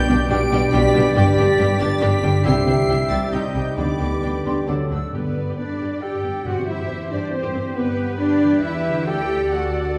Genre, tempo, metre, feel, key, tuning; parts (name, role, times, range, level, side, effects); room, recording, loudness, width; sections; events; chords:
classical, dramatic, fast romantic movement for symphony orchestra; 136 BPM; 3/4; uneven beats, rubato; G major; A4 = 440 Hz
clear symphonic violin section; melody; 0.0-10.0 s; B4 to D7; -36 LUFS; equal
flute section; second line; 0.0-10.0 s; B4 to E6; -35 LUFS; equal
warm clarinet; second line; 0.0-10.0 s; G4 to G5; -32 LUFS; equal
warm oboe; second line; 0.0-10.0 s; G4 to E5; -34 LUFS; equal
mellow bassoon; accompaniment; 0.0-4.9 s; F#3 to G3; -33 LUFS; equal
dark French horn section; sustained chords; 0.0-10.0 s; A3 to A4; -27 LUFS; equal
warm trombone section; sustained chords; 0.0-10.0 s; G2 to A3; -32 LUFS; equal
concert harp; arpeggios; 0.0-10.0 s; G2 to B5; -31 LUFS; equal
dark trumpet section; stabs; 0.0-10.0 s; B4 to E5; -33 LUFS; equal
rich studio violin section; second line; 0.1-10.0 s; G4 to G5; -36 LUFS; equal
rich symphonic viola section; accompaniment; 0.1-10.0 s; G3 to D5; -32 LUFS; equal
rich symphonic cello section; bass; 0.1-10.0 s; G2 to G4; -28 LUFS; equal
rich symphonic double bass section; bass; 0.1-10.0 s; G1 to G2; -28 LUFS; equal
timpani; percussion; 5.1-7.1 s; G2; -37 LUFS; equal
wet recital hall reverb, RT60 1.4 s; heard from further back in the room; -20 LUFS; mono
0.0-5.1 A section; 5.1-10.0 B section
0.0 G/B; 1.2 G; 2.5 C; 3.3 Cm; 3.8 G/D; 4.7 D; 5.1 G; 6.5 C/G; 7.8 G; 8.6 Em; 9.1 D